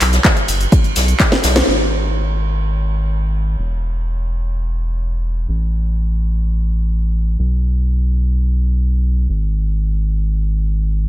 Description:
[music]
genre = progressive house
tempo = 126 BPM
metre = 4/4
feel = straight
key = unclear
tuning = A4 = 441 Hz
[part]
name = round analog bass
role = bass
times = 0.0-11.1 s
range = E1 to B1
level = -16 LUFS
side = equal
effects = sidechain pumping
[part]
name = house drum kit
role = drums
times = 0.0-1.7 s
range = handclaps, hi-hat, shaker, snare drum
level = -17 LUFS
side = equal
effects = sidechain pumping on hats, low-pass filter on hats, sidechain pumping on perc, low-pass filter on perc, low-pass filter on snare, low-pass filter on room
[part]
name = jazz brush drum kit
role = drums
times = 0.0-1.6 s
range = ride cymbal, snare drum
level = -25 LUFS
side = right 1 dB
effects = high-pass filter on cymbals, high-pass filter on snare, high-pass filter on room
[part]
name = electronic kick drum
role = drums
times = 0.2-1.3 s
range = none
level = -13 LUFS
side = equal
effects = overdrive
[sound]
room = light reverb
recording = none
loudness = -15 LUFS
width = side -15 dB against mid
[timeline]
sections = 0.0-1.7 A section; 1.7-11.1 B section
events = drum fill 1.3-1.7; band accent 1.6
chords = none

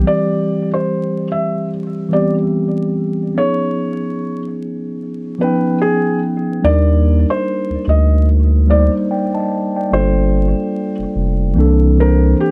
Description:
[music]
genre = lo-fi hip hop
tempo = 73 BPM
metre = 4/4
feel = swing 58% on 16ths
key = unclear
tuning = A4 = 442 Hz
[part]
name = mellow tine electric piano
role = accompaniment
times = 0.0-12.5 s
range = E3 to A5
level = -20 LUFS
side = equal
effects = low-pass filter
[part]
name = saturated sub bass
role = bass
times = 0.0, 6.6-12.3 s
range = F1 to Eb2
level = -15 LUFS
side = equal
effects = none
[part]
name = felt-muted upright piano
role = melody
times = 0.1-12.5 s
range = G4 to E5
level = -22 LUFS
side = equal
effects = low-pass filter
[sound]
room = light reverb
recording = dark, warm production, vinyl crackle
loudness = -16 LUFS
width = mono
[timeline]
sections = 0.1-12.5 A section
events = none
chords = 0.1 Cmaj7; 3.3 Db9; 6.6 Ebmaj7; 9.9 Gm9; 11.6 C13

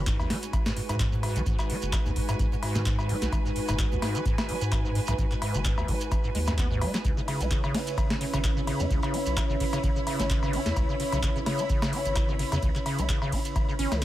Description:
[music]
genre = acid house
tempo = 129 BPM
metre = 4/4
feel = swing 55% on 16ths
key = G# minor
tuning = A4 = 440 Hz
[part]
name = warbly tape-like pad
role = sustained chords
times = 0.0-14.0 s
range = C#3 to B4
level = -35 LUFS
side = right 3 dB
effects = chorus, built-in reverb, sidechain pumping
[part]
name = acid bass, square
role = riff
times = 0.0-14.0 s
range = G#1 to E4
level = -32 LUFS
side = equal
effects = tube saturation, lush chorus, sidechain pumping, tape echo
[part]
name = saturated sub bass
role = bass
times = 0.0-14.0 s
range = F#1 to G#2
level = -30 LUFS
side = equal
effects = sidechain pumping
[part]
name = rich chamber string section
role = texture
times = 0.0-14.0 s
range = E4 to B5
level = -35 LUFS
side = left 1 dB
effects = sidechain pumping
[part]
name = booming analog drum machine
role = drums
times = 0.1-14.0 s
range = cowbell, handclaps, hi-hat, ride cymbal, snare drum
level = -33 LUFS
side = left 1 dB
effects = overdrive
[part]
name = electronic kick drum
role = drums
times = 0.1-14.0 s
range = none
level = -28 LUFS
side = equal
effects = overdrive
[part]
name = shekere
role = percussion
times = 0.1-14.0 s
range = none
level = -43 LUFS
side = right 5 dB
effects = none
[sound]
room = light reverb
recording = none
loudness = -25 LUFS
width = side -14 dB against mid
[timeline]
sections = 0.0-14.0 A section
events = none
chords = 0.0 G#m7; 7.0 C#m7

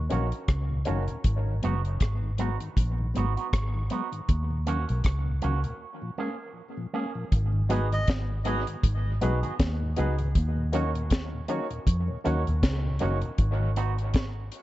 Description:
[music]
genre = dub reggae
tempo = 79 BPM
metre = 4/4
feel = swing 56% on 16ths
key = unclear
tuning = A4 = 438 Hz
[part]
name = mellow tonewheel organ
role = accompaniment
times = 0.0-13.7 s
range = Eb2 to Db4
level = -36 LUFS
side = left 2 dB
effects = slow rotary speaker, tape echo
[part]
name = vintage muted fingered electric bass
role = bass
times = 0.0-14.5 s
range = Gb1 to F2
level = -27 LUFS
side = equal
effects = none
[part]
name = electric guitar with an envelope filter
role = accompaniment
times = 0.1-13.9 s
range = Bb3 to Ab4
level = -35 LUFS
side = right 6 dB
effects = tape echo
[part]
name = dark baby grand piano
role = stabs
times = 0.1-1.0, 7.7-13.2 s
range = Db4 to Db5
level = -35 LUFS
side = left 2 dB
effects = tape echo
[part]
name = deep reggae drum kit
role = drums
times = 0.1-14.6 s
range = hi-hat, kick drum, rim click, snare drum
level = -26 LUFS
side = equal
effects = none
[part]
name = melodica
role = melody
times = 7.9-8.1 s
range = Eb5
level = -36 LUFS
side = right 1 dB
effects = tape echo
[sound]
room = light reverb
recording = dark, warm production, nothing above 7.9 kHz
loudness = -25 LUFS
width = side -16 dB against mid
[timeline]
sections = 0.0-7.3 A section; 7.3-14.6 B section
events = break 0.0-7.3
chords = 0.0 Ebm7; 1.2 Abm7; 4.3 Ebm7; 5.8 Bbm7; 7.3 Abm7; 10.4 Ebm7; 13.4 Abm7

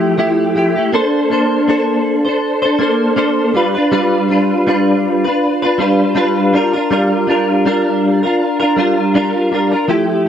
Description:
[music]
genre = indie pop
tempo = 80 BPM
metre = 4/4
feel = swing 55% on 16ths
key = unclear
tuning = A4 = 440 Hz
[part]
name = direct-recorded clean electric guitar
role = solo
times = 0.0-10.3 s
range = F3 to C5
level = -12 LUFS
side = equal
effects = ensemble chorus, warbly pitch drift
[sound]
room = wet small room reverb, RT60 0.6 s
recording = none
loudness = -12 LUFS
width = side -9 dB against mid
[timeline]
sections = 0.0-10.3 A section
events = none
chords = 0.0 Fmaj9; 0.9 Bbmaj9; 3.5 G7; 6.5 Gm7

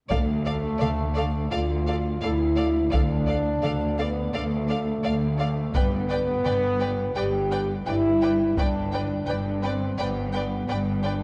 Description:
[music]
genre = cinematic, epic orchestral film score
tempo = 85 BPM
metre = 4/4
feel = straight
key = D dorian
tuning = A4 = 442 Hz
[part]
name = warm symphonic violin section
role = melody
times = 0.1-11.1 s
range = F5 to G5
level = -37 LUFS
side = equal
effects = none
[part]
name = rich studio violin section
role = second line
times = 0.1-11.1 s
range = D5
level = -39 LUFS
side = equal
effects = none
[part]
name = rich symphonic viola section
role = accompaniment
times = 0.1-11.1 s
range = A4 to B4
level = -39 LUFS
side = equal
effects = none
[part]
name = warm French horn section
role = sustained chords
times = 0.1-11.2 s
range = A3 to G4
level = -29 LUFS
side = equal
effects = none
[part]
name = rich studio double bass section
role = bass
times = 0.1-11.2 s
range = G1 to D2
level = -32 LUFS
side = equal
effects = none
[part]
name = warm symphonic cello section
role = bass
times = 0.1-11.2 s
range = D2 to G2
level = -32 LUFS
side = equal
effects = none
[part]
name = taiko ensemble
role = drums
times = 0.1-9.6 s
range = none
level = -31 LUFS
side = equal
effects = none
[sound]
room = wet concert hall reverb, RT60 1.9 s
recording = dark, warm production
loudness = -25 LUFS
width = mono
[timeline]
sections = 0.1-11.2 A section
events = none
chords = 0.1 Dm; 5.7 G

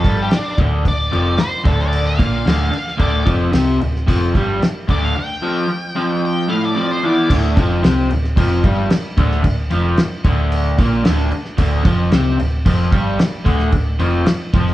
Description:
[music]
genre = garage rock duo or trio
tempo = 112 BPM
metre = 4/4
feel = straight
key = D minor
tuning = A4 = 439 Hz
[part]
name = octave-fuzz lead guitar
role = melody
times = 0.0-7.3 s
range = D4 to G5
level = -23 LUFS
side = equal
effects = distortion
[part]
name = crunchy overdriven guitar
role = riff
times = 0.0-14.7 s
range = D2 to C4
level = -18 LUFS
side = left 1 dB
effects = none
[part]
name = hollow-body short-scale picked electric bass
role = bass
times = 0.0-14.7 s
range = D1 to C2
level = -19 LUFS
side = equal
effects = none
[part]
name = cloth-damped thuddy drum kit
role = drums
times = 0.0-14.7 s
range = crash cymbal, kick drum, snare drum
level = -18 LUFS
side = equal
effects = none
[sound]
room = moderate large studio reverb, RT60 1.3 s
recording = band playing live in one room, cassette tape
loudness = -14 LUFS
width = side -15 dB against mid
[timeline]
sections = 0.0-7.3 A section; 7.3-14.7 B section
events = lead electric guitar solo 0.0-7.3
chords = 0.0 Dm

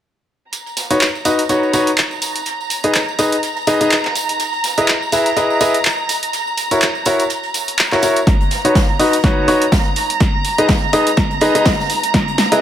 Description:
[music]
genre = piano house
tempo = 124 BPM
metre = 4/4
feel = swing 56% on 16ths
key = B major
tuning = A4 = 439 Hz
[part]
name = muted chamber violin section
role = sustained chords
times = 0.5-12.6 s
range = A#5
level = -21 LUFS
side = right 2 dB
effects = sidechain pumping, low-pass filter
[part]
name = open jazz drum kit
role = drums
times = 0.5-12.5 s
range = hi-hat, snare drum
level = -30 LUFS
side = right 2 dB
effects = sidechain pumping on hats, high-pass filter on hats, low-pass filter on hats, high-pass filter on snare, low-pass filter on snare, high-pass filter on room, low-pass filter on room
[part]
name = punchy analog drum machine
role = drums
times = 0.5-12.6 s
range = handclaps, hi-hat, snare drum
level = -19 LUFS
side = equal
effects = overdrive
[part]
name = tambourine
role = percussion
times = 0.5-8.2 s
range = none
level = -28 LUFS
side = right 4 dB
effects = none
[part]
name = bright grand piano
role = riff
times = 0.9-12.6 s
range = D#4 to E5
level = -16 LUFS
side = left 1 dB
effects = sidechain pumping, low-pass filter, dub echo
[part]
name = electronic kick drum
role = drums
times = 8.3-12.2 s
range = none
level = -16 LUFS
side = equal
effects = overdrive
[sound]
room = moderate plate reverb, RT60 1.2 s, small room reverb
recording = high-pass filter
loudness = -13 LUFS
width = side -10 dB against mid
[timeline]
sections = 0.5-8.3 A section; 8.3-12.6 B section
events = build-up 8.3-12.6; drum fill 8.3-12.6; filter sweep on grand piano 8.3-12.6; filter sweep 8.3-12.6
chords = 0.5 Badd9; 2.5 G#m; 4.2 Emaj7; 6.1 F#7; 8.3 Badd9; 10.2 G#m; 11.9 Emaj7

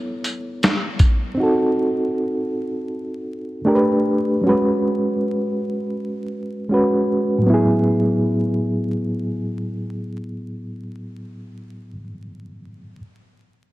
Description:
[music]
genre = lo-fi hip hop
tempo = 79 BPM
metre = 4/4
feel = swing 63% on 16ths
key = A major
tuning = A4 = 440 Hz
[part]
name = bright reed electric piano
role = accompaniment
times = 0.0-13.0 s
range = A2 to C#5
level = -20 LUFS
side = equal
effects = fast tremolo, cassette tape
[part]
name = boom bap sampler-style drum kit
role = drums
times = 0.2-1.2 s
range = hi-hat, kick drum, snare drum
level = -17 LUFS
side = equal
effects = vintage 12-bit sampler grit
[sound]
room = moderate plate reverb, RT60 3.4 s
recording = dark, warm production, vinyl crackle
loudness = -18 LUFS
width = side -17 dB against mid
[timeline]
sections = 0.0-7.5 A section; 7.5-10.5 B section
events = none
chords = 0.0 B9sus4; 1.4 Cdim7; 3.7 A9sus4; 4.4 F#sus24; 7.5 Asus2

